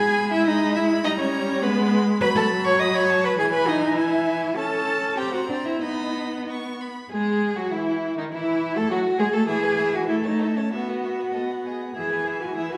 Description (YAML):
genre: quick classical-period movement for string quartet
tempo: 90-104 BPM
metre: 2/4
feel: rubato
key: E major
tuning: A4 = 440 Hz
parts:
  - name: rich violin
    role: melody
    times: 0.0-12.8 s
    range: D#4 to C#6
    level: -36 LUFS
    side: equal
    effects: none
  - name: rich violin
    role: second line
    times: 0.0-12.8 s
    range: D#4 to D#6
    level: -32 LUFS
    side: equal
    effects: none
  - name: clear viola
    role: accompaniment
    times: 0.0-12.8 s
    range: D#3 to C#4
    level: -28 LUFS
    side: equal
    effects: none
  - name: rich cello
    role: bass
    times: 0.0-12.8 s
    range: B3 to D#5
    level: -26 LUFS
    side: equal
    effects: none
room: wet recital hall reverb, RT60 1.7 s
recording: heard from further back in the room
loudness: -23 LUFS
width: mono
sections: 0.0-7.1 A section; 7.1-12.8 B section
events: none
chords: 0.0 G#m; 1.1 D#/G (rootless); 1.6 G#m; 2.2 B7/F#; 3.4 E; 4.6 A/C#; 5.2 C7; 5.8 B; 7.1 E; 8.3 A5/E; 8.9 F#madd9; 9.5 E; 10.1 A; 10.7 Bsus4; 12.0 E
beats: 0.47 | 1.05 1.64 | 2.21 2.80 | 3.39 3.97 | 4.57 5.18 | 5.82 6.48 | 7.12 7.72 | 8.32 8.90 | 9.48 10.08 | 10.72 11.35 | 11.96 12.56